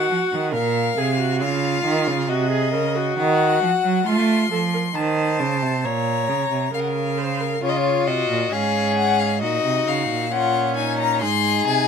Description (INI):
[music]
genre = classical, baroque-style fugue for string quartet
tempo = 67 BPM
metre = 4/4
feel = straight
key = Db major from 7.6 s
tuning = A4 = 440 Hz
[part]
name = rich violin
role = melody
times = 0.0-11.9 s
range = Db5 to C6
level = -23 LUFS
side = left 10 dB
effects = none
[part]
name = rich viola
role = accompaniment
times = 0.0-11.9 s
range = Db4 to Db5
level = -25 LUFS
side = right 1 dB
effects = none
[part]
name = rich cello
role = bass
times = 0.0-11.9 s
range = Ab2 to A3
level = -23 LUFS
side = right 5 dB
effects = none
[part]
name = rich violin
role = second line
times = 7.6-11.9 s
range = Eb4 to Ab4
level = -24 LUFS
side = left 3 dB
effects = none
[sound]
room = light reverb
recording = minimal, uncompressed stereo recording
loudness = -18 LUFS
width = side -6 dB against mid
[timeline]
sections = 0.0-7.6 A section; 7.6-11.9 B section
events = none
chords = 0.0 Ebm; 0.5 Bbm; 2.3 Cm7b5; 4.1 F7; 5.8 Bbm; 7.6 Db; 9.4 Ebm7/Bb; 11.2 Ab